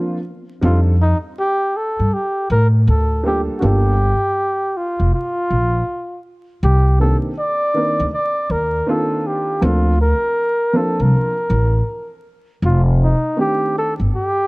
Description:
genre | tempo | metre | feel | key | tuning
hip hop, jazz-hop | 80 BPM | 4/4 | swing 66% on 16ths | C dorian | A4 = 440 Hz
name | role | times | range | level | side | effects
breathy flugelhorn | melody | 0.0-14.5 s | Eb4 to D5 | -19 LUFS | equal | none
dark upright piano | accompaniment | 0.0-14.0 s | Eb3 to Bb4 | -21 LUFS | right 1 dB | none
upright bass | bass | 0.6-14.1 s | F1 to A2 | -15 LUFS | equal | none
room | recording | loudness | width
light reverb | worn, warbling old tape, cassette tape, vinyl crackle, warbly pitch drift | -15 LUFS | side -26 dB against mid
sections
0.0-14.5 A section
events
none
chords
0.0 Bbadd9; 0.6 F13; 2.9 D5; 3.6 Gm7; 6.6 Cm9; 9.6 Bbmaj9; 12.6 F13

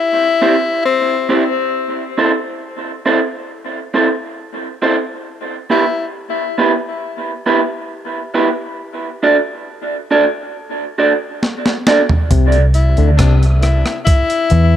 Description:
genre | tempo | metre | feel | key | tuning
dub reggae | 68 BPM | 4/4 | straight | unclear | A4 = 440 Hz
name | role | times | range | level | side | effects
warm tenor saxophone | second line | 0.0-6.1, 12.7-14.8 s | C4 to E4 | -18 LUFS | left 4 dB | tape echo
electric guitar through a small old amp | accompaniment | 0.4-12.0 s | B3 to D5 | -16 LUFS | right 2 dB | tape echo
breakbeat sampler-style drum kit | drums | 11.4-14.7 s | hi-hat, kick drum, rim click, snare drum, toms | -16 LUFS | equal | none
auto-wah clav | riff | 12.3-14.8 s | C3 to E3 | -20 LUFS | left 6 dB | overdrive, tape echo
vintage muted fingered electric bass | bass | 12.3-14.8 s | C2 to E2 | -11 LUFS | equal | none
room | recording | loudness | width
moderate spring reverb, RT60 2.9 s | echo-heavy mix | -13 LUFS | side -10 dB against mid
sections
0.0-14.8 A section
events
break 1.7-8.8; drum fill 11.4-12.3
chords
0.0 C; 1.7 Am; 5.3 Em; 8.8 D; 12.3 C

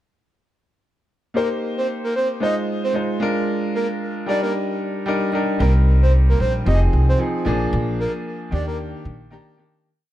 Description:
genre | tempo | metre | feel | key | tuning
afrobeats | 113 BPM | 4/4 | swing 55% on 16ths | unclear | A4 = 440 Hz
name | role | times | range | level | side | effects
warm concert grand piano | accompaniment | 1.3-9.9 s | Eb3 to Bb5 | -23 LUFS | equal | none
breathy flute-like synth lead | melody | 1.4-8.8 s | Bb4 to Eb5 | -25 LUFS | right 1 dB | chorus, digital delay
upright bass | bass | 5.6-9.4 s | F1 to Eb2 | -17 LUFS | equal | none
room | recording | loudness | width
studio reverb | dark, warm production | -18 LUFS | side -13 dB against mid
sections
1.4-9.8 verse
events
fade-out 7.7-9.8; grand piano fill 9.1-9.8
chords
1.4 Cm7; 2.4 Fm7; 3.2 Bb7; 4.3 Ebmaj7; 5.6 Cm7; 6.7 Fm7; 7.5 Bb7; 8.5 Ebmaj7

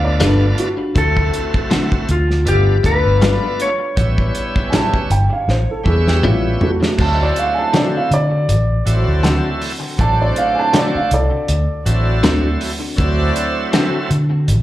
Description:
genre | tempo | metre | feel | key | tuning
straight-eighth soul blues | 80 BPM | 4/4 | swing 56% on 16ths | D mixolydian | A4 = 442 Hz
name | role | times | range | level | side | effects
dark upright piano | second line | 0.0-12.6 s | A3 to A5 | -19 LUFS | right 2 dB | slapback echo
bright tonewheel organ | accompaniment | 0.0-14.1 s | F#3 to E5 | -23 LUFS | right 2 dB | slow rotary speaker, overdrive, slapback echo
vintage muted fingered electric bass | bass | 0.0-14.6 s | G1 to D3 | -16 LUFS | equal | none
direct-recorded clean electric guitar | stabs | 0.2-14.0 s | A2 to B4 | -22 LUFS | left 3 dB | phaser, slapback echo, analog delay
warm soul drum kit | drums | 0.2-14.6 s | crash cymbal, hi-hat, kick drum, snare drum, toms | -20 LUFS | equal | none
clean lap steel guitar | melody | 1.0-6.2 s | F4 to C#5 | -20 LUFS | left 3 dB | slapback echo
warm chamber string section | sustained chords | 7.0-13.7 s | F#4 to D5 | -28 LUFS | equal | none
room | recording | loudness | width
light reverb, small room ambience | live gig heard through the venue's PA, club reverb | -14 LUFS | side -14 dB against mid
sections
0.0-7.0 A section; 7.0-14.6 B section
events
drum fill 5.5-7.0; upright piano solo 7.0-14.6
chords
0.0 G7; 1.0 D7; 2.5 G7; 4.0 A7; 7.0 D7

